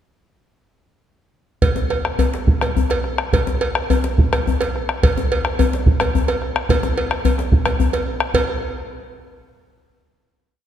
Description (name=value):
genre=west african traditional, West African drum ensemble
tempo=144 BPM (dotted quarters)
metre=12/8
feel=straight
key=none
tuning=none
part: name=bombo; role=percussion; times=1.6-8.5 s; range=none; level=-20 LUFS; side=right 1 dB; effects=none
part: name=cowbell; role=percussion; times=1.6-8.5 s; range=none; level=-23 LUFS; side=right 3 dB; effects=none
part: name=djembe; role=percussion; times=1.6-8.5 s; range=none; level=-21 LUFS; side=left 3 dB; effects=none
room=wet scoring stage reverb, RT60 2.0 s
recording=dark, warm production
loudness=-17 LUFS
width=side -10 dB against mid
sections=1.6-8.3 A section; 8.3-10.0 final hit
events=speeding up 1.6-10.0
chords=none